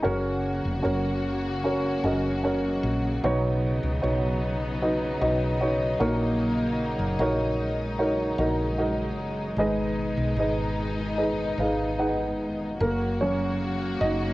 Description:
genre	pop ballad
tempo	75 BPM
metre	4/4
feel	straight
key	F# major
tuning	A4 = 443 Hz
part	dark baby grand piano	accompaniment	0.0-14.3 s	G#2 to F#5	-26 LUFS	equal	cassette tape, plate reverb
part	rich studio string section	sustained chords	0.0-14.3 s	B2 to F#4	-30 LUFS	left 1 dB	cassette tape, plate reverb
part	woody fretless electric bass	bass	0.0-14.3 s	E#1 to C#2	-30 LUFS	equal	analog chorus
room	moderate studio reverb, RT60 0.7 s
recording	home recording on cassette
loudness	-24 LUFS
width	side -18 dB against mid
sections	0.0-12.8 A section; 12.8-14.3 B section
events	grand piano solo 12.8-14.3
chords	0.0 F#; 3.2 Badd9; 6.0 D#m7; 9.6 G#m; 12.8 F#

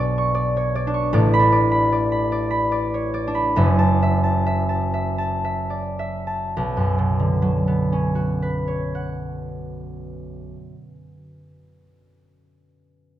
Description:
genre	classical, solo harp piece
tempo	51-79 BPM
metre	3/4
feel	rubato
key	B minor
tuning	A4 = 441 Hz
part	concert harp	solo	0.0-11.1 s	F#1 to C#6	-19 LUFS	equal	none
room	wet recital hall reverb, RT60 1.4 s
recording	none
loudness	-18 LUFS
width	side -12 dB against mid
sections	0.0-6.5 A section; 6.5-9.7 B section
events	slowing down 0.0-6.5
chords	0.0 Bmadd9; 1.1 Asus24; 3.5 F#m7; 6.5 Bmadd9

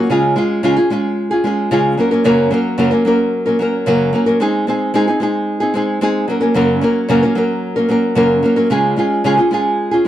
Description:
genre	pop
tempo	111 BPM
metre	4/4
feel	straight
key	Db major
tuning	A4 = 440 Hz
part	nylon-string guitar	solo	0.0-10.1 s	Gb2 to Bb4	-13 LUFS	equal	none
room	moderate studio reverb, RT60 0.9 s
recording	dark, warm production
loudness	-13 LUFS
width	side -12 dB against mid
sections	0.1-10.1 A section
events	none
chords	0.1 Db; 2.0 Gb; 4.4 Ab; 6.3 Gb; 8.7 Db

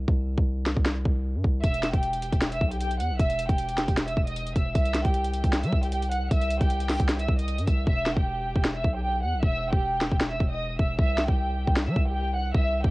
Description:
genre	hip hop, trap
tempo	154 BPM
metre	4/4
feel	half-time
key	E harmonic minor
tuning	A4 = 439 Hz
part	long sustained 808-style bass	bass	0.0-12.9 s	E1 to G3	-28 LUFS	equal	none
part	trap drum kit	drums	0.1-12.9 s	hi-hat, kick drum, snare drum	-25 LUFS	equal	none
part	dark studio violin section	melody	1.6-12.9 s	G4 to F#6	-29 LUFS	right 1 dB	low-pass filter, cassette tape
room	little or no reverb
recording	home recording on cassette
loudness	-23 LUFS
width	side -20 dB against mid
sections	0.0-12.9 A section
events	break 0.0-1.6; hi-hats muted 7.9-12.9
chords	0.0 C5; 1.6 Em; 4.8 C; 7.9 Em; 11.0 C

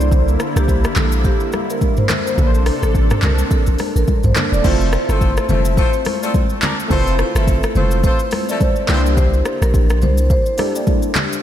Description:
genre	afrobeats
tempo	106 BPM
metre	4/4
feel	swing 58% on 16ths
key	F major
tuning	A4 = 440 Hz
part	marimba with medium mallets	melody	0.0-10.9 s	G4 to D5	-23 LUFS	equal	tape echo
part	warm analog keys	accompaniment	0.0-11.4 s	A3 to D5	-24 LUFS	equal	chorus
part	lush unison pad	sustained chords	0.0-4.6 s	C3 to A4	-25 LUFS	left 1 dB	chorus, phaser
part	punchy sub bass	bass	0.0-10.3 s	E1 to C2	-16 LUFS	equal	none
part	afro-pop drum kit	drums	0.0-11.4 s	crash cymbal, handclaps, hi-hat, kick drum, rim click, shaker, toms	-18 LUFS	equal	none
part	congas	percussion	0.1-11.3 s	none	-26 LUFS	left 2 dB	none
part	clear horn section	second line	4.6-9.0 s	F3 to D5	-24 LUFS	left 2 dB	tape echo
room	light reverb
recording	none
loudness	-14 LUFS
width	side -11 dB against mid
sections	0.0-4.6 A section; 4.6-11.4 B section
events	none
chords	0.0 C9; 2.4 Bbmaj9; 4.6 Fmaj7; 8.9 C9

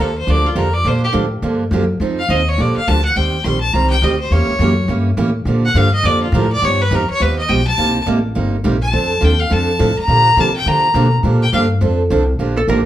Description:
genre	country, western swing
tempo	208 BPM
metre	4/4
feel	swing 62% on 8ths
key	Bb major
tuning	A4 = 440 Hz
part	clear fiddle	melody	0.0-11.6 s	F4 to C6	-17 LUFS	left 1 dB	none
part	picked steel-string acoustic guitar	accompaniment	0.0-12.8 s	C3 to C5	-19 LUFS	right 3 dB	none
part	upright bass	bass	0.0-12.8 s	G1 to D3	-17 LUFS	left 1 dB	none
part	archtop guitar, miked and amplified	second line	12.6-12.9 s	A4 to Bb4	-17 LUFS	right 2 dB	none
room	wet large studio reverb, RT60 0.8 s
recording	band playing live in one room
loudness	-13 LUFS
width	side -12 dB against mid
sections	0.0-12.4 A section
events	fiddle solo 0.0-12.4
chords	0.0 Bb6; 2.0 Fm7; 2.6 Bb6; 3.2 Eb6; 4.3 Edim7; 5.5 Bb6; 6.6 Gaug7; 7.8 Cm7; 8.9 F6; 10.1 Bb6; 11.8 F6

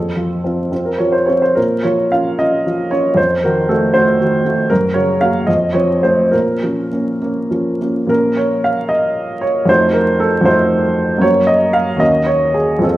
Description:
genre	classical, romantic character piece for solo piano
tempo	67-80 BPM (dotted quarters)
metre	6/8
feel	rubato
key	Bb minor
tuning	A4 = 440 Hz
part	warm upright piano	solo	0.0-13.0 s	Eb2 to F5	-12 LUFS	equal	none
room	wet recital hall reverb, RT60 1.4 s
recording	vinyl crackle, lossy compression artefacts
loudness	-13 LUFS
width	side -15 dB against mid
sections	0.0-8.1 A section; 8.1-13.0 A section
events	none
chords	0.0 F; 1.6 Bbm; 3.2 F7b9; 4.7 Gb; 5.5 F; 6.3 Bbm; 9.7 F7b9; 11.2 Gb; 12.0 Ebm7

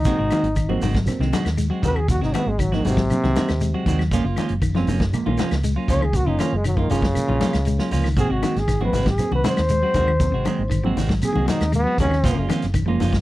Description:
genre	afrobeat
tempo	118 BPM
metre	4/4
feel	straight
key	Ab mixolydian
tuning	A4 = 440 Hz
part	clear trombone	melody	0.0-12.5 s	C3 to Db5	-24 LUFS	equal	none
part	fingered electric bass	bass	0.0-13.2 s	Gb1 to Eb2	-23 LUFS	equal	none
part	shekere	percussion	0.0-13.1 s	none	-30 LUFS	right 1 dB	none
part	reed electric piano	accompaniment	0.1-13.0 s	F3 to Eb4	-28 LUFS	right 4 dB	phaser
part	clean electric guitar	stabs	0.1-13.2 s	Eb3 to Gb4	-27 LUFS	right 5 dB	none
part	vintage drum kit	drums	0.1-13.2 s	hi-hat, kick drum, snare drum	-26 LUFS	equal	none
part	congas	percussion	0.1-13.1 s	none	-29 LUFS	left 5 dB	none
part	clean electric guitar	arpeggios	0.2-13.2 s	C3 to Bb3	-28 LUFS	left 4 dB	none
part	claves	percussion	0.3-12.9 s	none	-40 LUFS	left 5 dB	none
room	little or no reverb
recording	dry, close 1970s-style studio recording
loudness	-18 LUFS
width	side -16 dB against mid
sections	0.0-13.2 A section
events	trombone solo 0.0-13.2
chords	0.1 Ab7; 4.1 Gbmaj7; 8.2 Ab7; 12.2 Gbmaj7

